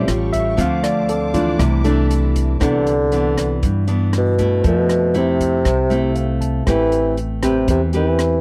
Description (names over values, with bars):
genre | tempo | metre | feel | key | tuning
bossa nova | 118 BPM | 4/4 | straight | C major | A4 = 438 Hz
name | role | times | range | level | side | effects
barky tine electric piano | accompaniment | 0.0-8.4 s | F3 to A5 | -27 LUFS | equal | overdrive
nylon-string guitar | accompaniment | 0.0-8.4 s | G2 to B4 | -24 LUFS | equal | none
dark symphonic string section | sustained chords | 0.0-2.6 s | A4 to D6 | -36 LUFS | equal | none
upright bass | bass | 0.0-8.4 s | A1 to G2 | -22 LUFS | equal | none
compact cocktail drum kit | drums | 0.1-8.3 s | hi-hat, kick drum, rim click | -25 LUFS | equal | none
mellow bassoon | melody | 2.6-8.4 s | B2 to E3 | -20 LUFS | equal | slapback echo
room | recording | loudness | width
little or no reverb | dry, close 1970s-style studio recording | -17 LUFS | mono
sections
0.0-2.6 A section; 2.6-8.4 B section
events
tine electric piano solo 0.0-2.6; tine electric piano fill 5.7-6.7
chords
0.1 A7b13; 0.6 Dm7; 1.6 C69; 2.6 Cmaj9; 4.6 Fmaj7; 6.7 Am9